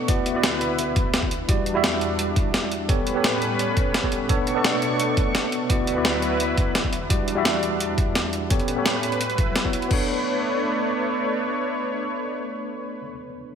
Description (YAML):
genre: liquid drum and bass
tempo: 171 BPM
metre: 4/4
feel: straight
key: B minor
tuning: A4 = 445 Hz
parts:
  - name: tine electric piano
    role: accompaniment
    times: 0.0-13.6 s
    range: G3 to E5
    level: -26 LUFS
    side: equal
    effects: medium stereo tremolo, low-pass filter, digital delay
  - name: lush unison pad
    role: sustained chords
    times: 0.0-13.0 s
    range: D2 to C#6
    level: -27 LUFS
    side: equal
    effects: chorus
  - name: breakbeat sampler-style drum kit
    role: drums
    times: 0.1-10.0 s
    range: crash cymbal, hi-hat, snare drum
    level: -25 LUFS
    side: equal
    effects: small room ambience
  - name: electronic kick drum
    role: drums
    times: 0.1-10.0 s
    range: none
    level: -24 LUFS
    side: equal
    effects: small room ambience
room: moderate lush hall reverb, RT60 2.1 s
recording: none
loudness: -20 LUFS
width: side -7 dB against mid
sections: 0.0-9.9 A section; 9.9-12.7 B section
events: none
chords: 0.1 D69; 1.3 Em9; 2.9 A9; 4.3 Bm9; 5.7 D69; 6.9 Em9; 8.5 A9; 9.2 F#7sus4; 9.9 Bm9